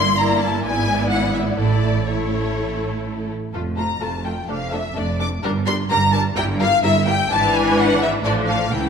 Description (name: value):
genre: quick classical-period movement for string orchestra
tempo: 127 BPM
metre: 4/4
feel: rubato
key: unclear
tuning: A4 = 439 Hz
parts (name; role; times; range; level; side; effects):
- dark symphonic violin section; melody; 0.0-8.9 s; A4 to D5; -28 LUFS; left 6 dB; none
- warm studio violin section; second line; 0.0-8.9 s; C#5 to D6; -21 LUFS; left 3 dB; none
- clear studio viola section; accompaniment; 0.0-8.9 s; E3 to F4; -24 LUFS; equal; none
- rich symphonic double bass section; bass; 0.0-8.9 s; F1 to C#2; -26 LUFS; right 4 dB; none
- warm studio cello section; bass; 0.0-8.9 s; F2 to C#3; -24 LUFS; right 3 dB; none
room: moderate scoring stage reverb, RT60 1.6 s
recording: none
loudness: -17 LUFS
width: side -6 dB against mid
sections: 0.0-8.9 A section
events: none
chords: 0.0 Em7b5/G; 0.6 E7/G#; 1.6 A; 3.5 F; 4.5 Dm/F; 5.4 Gm; 6.4 Edim/G; 7.3 E7/G#; 8.2 Dm/A